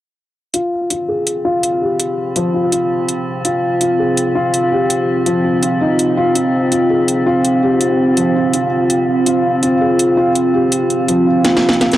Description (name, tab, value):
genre	half-time drum and bass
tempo	165 BPM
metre	4/4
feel	swing 57% on 16ths, half-time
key	F minor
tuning	A4 = 440 Hz
part	dark analog pad	sustained chords	1.8-12.0 s	C4 to F5	-17 LUFS	right 1 dB	chorus
part	felt-muted upright piano	arpeggios	0.5-12.0 s	F3 to F5	-16 LUFS	left 1 dB	low-pass filter, analog delay
part	drum and bass drum kit	drums	0.5-12.0 s	hi-hat, snare drum	-17 LUFS	equal	none
part	metallic inharmonic drone	texture	1.1-12.0 s	C4	-21 LUFS	right 1 dB	chorus, built-in reverb
room	little or no reverb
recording	dry, gritty hardware recording, cassette tape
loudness	-13 LUFS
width	side -14 dB against mid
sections	0.5-12.0 A section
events	filter sweep on analog synth pad 0.5-12.0; filter sweep on felt piano 0.5-12.0; drum fill 11.4-12.0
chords	0.5 F5